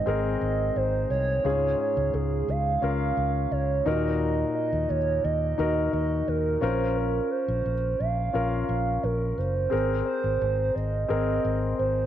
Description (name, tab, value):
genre	pop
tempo	87 BPM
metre	4/4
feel	straight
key	unclear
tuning	A4 = 439 Hz
part	hollow clarinet-like synth lead	melody	0.0-12.1 s	Ab4 to F5	-27 LUFS	right 5 dB	chorus, cassette tape
part	warm concert grand piano	accompaniment	0.0-12.1 s	Ab2 to Bb4	-29 LUFS	left 6 dB	none
part	fingered electric bass	bass	0.1-12.1 s	Gb1 to Eb2	-28 LUFS	equal	none
room	moderate lush hall reverb, RT60 2.6 s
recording	home recording on cassette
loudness	-24 LUFS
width	side -10 dB against mid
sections	0.0-12.1 A section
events	none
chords	0.0 Abadd9; 1.5 Db; 3.9 Ebm; 6.6 Bbm; 9.7 Abadd9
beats	0.07 0.76 | 1.45 2.14 2.83 3.52 | 4.21 4.90 5.59 6.28 | 6.97 7.66 8.35 9.04 | 9.72 10.41 11.10 11.79